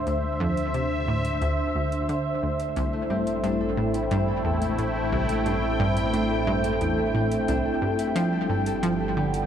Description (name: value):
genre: ambient, sequencer-driven space music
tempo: 89 BPM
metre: 4/4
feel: straight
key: unclear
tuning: A4 = 440 Hz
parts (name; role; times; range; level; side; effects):
- sweeping resonant pad; sustained chords; 0.0-9.5 s; D3 to G5; -26 LUFS; left 1 dB; chorus
- fat analog bass; bass; 0.0-9.5 s; G1 to D2; -34 LUFS; equal; tube saturation
- analog pluck; riff; 0.1-9.4 s; C2 to F3; -27 LUFS; equal; chorus, tape echo
- electronic hi-hat and congas; percussion; 0.1-9.5 s; none; -41 LUFS; left 3 dB; overdrive, tape echo
- concert harp; arpeggios; 2.9-9.5 s; A3 to A4; -31 LUFS; moving between left 2 dB and right 4 dB; auto-pan, tape echo
room: moderate huge ambient reverb, RT60 7.7 s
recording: cassette tape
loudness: -23 LUFS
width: side -9 dB against mid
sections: 0.0-9.5 A section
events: fade-in on drum 0.0-9.5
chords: 0.0 D7(no3); 2.8 Am7; 8.2 G7